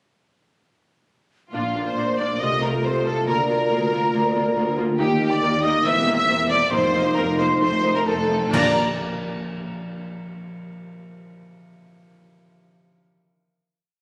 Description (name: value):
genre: classical, dramatic, fast romantic movement for symphony orchestra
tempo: 126-143 BPM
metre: 4/4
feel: rubato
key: Bb major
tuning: A4 = 440 Hz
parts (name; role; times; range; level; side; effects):
- warm symphonic violin section; melody; 1.5-8.8 s; F4 to Bb5; -28 LUFS; equal; none
- mellow silver concert flute; second line; 1.5-8.8 s; F5 to E6; -28 LUFS; equal; none
- warm symphonic violin section; second line; 1.5-8.8 s; F4 to E5; -29 LUFS; equal; none
- clear symphonic viola section; accompaniment; 1.5-8.8 s; A3 to F4; -32 LUFS; equal; none
- concert harp; arpeggios; 1.5-10.4 s; Bb2 to F5; -32 LUFS; equal; none
- rich symphonic cello section; bass; 1.5-8.8 s; D2 to C3; -31 LUFS; equal; none
- rich symphonic double bass section; bass; 1.5-8.8 s; E1 to Eb2; -34 LUFS; equal; none
- dark French horn section; sustained chords; 1.6-8.7 s; A3 to F4; -30 LUFS; equal; none
- cymbal swell, clash cymbals and concert bass drum; percussion; 5.0-9.4 s; none; -38 LUFS; equal; none
- timpani; percussion; 6.7-8.7 s; F2 to Bb2; -36 LUFS; equal; none
room: wet concert hall reverb, RT60 2.4 s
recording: recorded on a phone in the room, club reverb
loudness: -21 LUFS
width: mono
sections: 1.5-8.5 A section; 8.5-10.4 final chord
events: band accent 8.5-9.0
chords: 1.5 Bb; 2.4 F/C; 3.3 Bb/D; 5.0 Eb; 5.8 C7/E; 6.7 F7sus4; 7.6 F7; 8.5 Bb